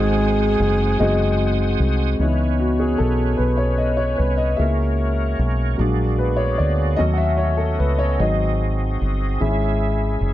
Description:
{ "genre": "slow gospel", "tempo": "50 BPM (dotted quarters)", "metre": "6/8", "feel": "straight", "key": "C# minor", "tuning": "A4 = 440 Hz", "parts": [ { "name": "mellow horn section", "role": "melody", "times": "0.0-1.8 s", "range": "G#3 to G#4", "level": "-23 LUFS", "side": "right 2 dB", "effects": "none" }, { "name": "warm upright piano", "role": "accompaniment", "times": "0.0-10.3 s", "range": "G#2 to F#5", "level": "-21 LUFS", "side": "left 1 dB", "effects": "none" }, { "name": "bright tonewheel organ", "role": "sustained chords", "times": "0.0-10.3 s", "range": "A#3 to D#6", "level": "-29 LUFS", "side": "right 4 dB", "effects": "fast rotary speaker, overdrive, chorus vibrato" }, { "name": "fingered electric bass", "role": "bass", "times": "0.0-10.3 s", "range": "F#1 to D#2", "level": "-20 LUFS", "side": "equal", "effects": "none" } ], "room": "light reverb, studio reverb", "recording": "dark, warm production, nothing above 7.7 kHz", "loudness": "-17 LUFS", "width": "side -14 dB against mid", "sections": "0.0-2.2 A section; 2.2-10.3 B section", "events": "upright piano solo 2.2-10.3", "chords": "0.0 G#7; 2.2 C#m7; 4.6 F#7/C#; 5.8 A#aug7; 7.0 D#m7b5; 8.2 G#7; 9.4 C#m/G#" }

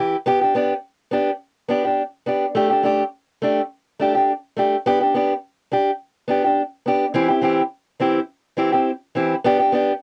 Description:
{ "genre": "highlife", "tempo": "104 BPM", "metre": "4/4", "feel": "swing 53% on 16ths", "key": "G major", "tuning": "A4 = 440 Hz", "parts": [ { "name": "fingerpicked steel-string acoustic guitar", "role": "solo", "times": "0.0-9.9 s", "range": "E3 to G4", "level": "-19 LUFS", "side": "equal", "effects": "cassette tape" } ], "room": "moderate booth ambience, RT60 0.2 s", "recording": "home recording on cassette", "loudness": "-21 LUFS", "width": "mono", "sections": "0.0-4.8 A section; 4.8-10.0 A section", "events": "none", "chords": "0.3 G; 2.6 Dsus4; 4.8 G; 7.1 C; 9.4 G" }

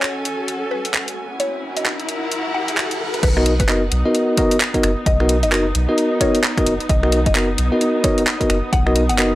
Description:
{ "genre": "UK garage, two-step garage", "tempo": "131 BPM", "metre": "4/4", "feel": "swing 61% on 16ths", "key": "B major", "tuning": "A4 = 440 Hz", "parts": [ { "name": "mallet-like synth pluck", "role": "melody", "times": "0.0-9.2 s", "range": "A#4 to F#5", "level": "-26 LUFS", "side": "left 1 dB", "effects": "chorus, phaser, tape echo" }, { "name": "warm analog pad", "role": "sustained chords", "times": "0.0-9.4 s", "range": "B3 to D#6", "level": "-31 LUFS", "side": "equal", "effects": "chorus, sidechain pumping" }, { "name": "garage drum kit", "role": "drums", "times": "0.0-9.3 s", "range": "crash cymbal, finger snaps, handclaps, hi-hat", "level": "-21 LUFS", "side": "equal", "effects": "small room ambience" }, { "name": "riser", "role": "sound effects", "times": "0.8-3.2 s", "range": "none", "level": "-30 LUFS", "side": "left 1 dB", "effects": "none" }, { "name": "rich chamber string section", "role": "texture", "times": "0.0-9.4 s", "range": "B3 to G#5", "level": "-27 LUFS", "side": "equal", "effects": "sidechain pumping" }, { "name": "soft dub sub bass", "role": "bass", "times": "3.2-9.4 s", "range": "F#1 to B1", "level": "-20 LUFS", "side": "equal", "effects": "none" }, { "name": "electronic kick drum", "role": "drums", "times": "3.2-8.8 s", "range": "none", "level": "-21 LUFS", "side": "equal", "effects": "overdrive, small room ambience" }, { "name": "bell-like tine electric piano", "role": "stabs", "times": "3.4-9.3 s", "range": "B3 to D#5", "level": "-18 LUFS", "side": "equal", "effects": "vintage 12-bit sampler grit" } ], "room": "little or no reverb", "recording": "dry, gritty hardware recording", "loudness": "-16 LUFS", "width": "side -16 dB against mid", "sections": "0.0-3.2 A section; 3.2-9.4 B section", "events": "riser 0.8-3.2; drop 3.2-9.4", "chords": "0.0 Amaj7; 3.2 Bmaj7" }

